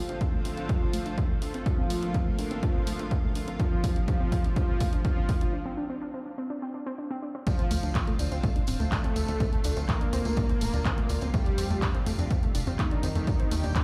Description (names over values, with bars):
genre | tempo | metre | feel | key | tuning
melodic techno | 124 BPM | 4/4 | straight | D phrygian | A4 = 440 Hz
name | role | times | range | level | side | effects
mellow synth brass | melody | 0.0-13.8 s | D4 to Bb4 | -40 LUFS | equal | chorus, sidechain pumping, dub echo
soft supersaw | second line | 0.0-13.8 s | D3 to Bb3 | -40 LUFS | equal | sidechain pumping, delay
lush unison pad | sustained chords | 0.0-13.8 s | Bb2 to G5 | -41 LUFS | equal | chorus, sidechain pumping
tight sequencer bass | bass | 0.0-13.8 s | D1 to F2 | -34 LUFS | equal | sidechain pumping, high-pass filter
warbly dusty pluck | arpeggios | 0.1-13.8 s | A3 to D5 | -38 LUFS | equal | chorus, sidechain pumping, delay
punchy analog drum machine | drums | 0.1-13.8 s | handclaps, hi-hat | -41 LUFS | equal | none
electronic kick drum | drums | 0.2-13.8 s | none | -30 LUFS | equal | none
tambourine | percussion | 7.5-13.8 s | none | -46 LUFS | equal | none
room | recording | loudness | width
light reverb | played on a big sound system in a bare room, large studio reverb | -28 LUFS | mono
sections
0.0-7.5 A section; 7.5-13.8 B section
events
build-up 0.0-7.5; drum fill 0.0-5.5; filter sweep on synth arpeggio sound 0.0-7.5; filter sweep on analog polysynth 0.0-7.5; filter sweep on supersaw synth 0.0-7.5; break 5.5-7.5; drop 7.5-13.8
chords
0.0 Dm7; 1.7 Bbmaj7/D; 3.6 Fadd9; 5.5 Csus2; 7.5 Dm7; 9.4 Bbmaj7/D; 11.3 Fadd9; 13.3 Eb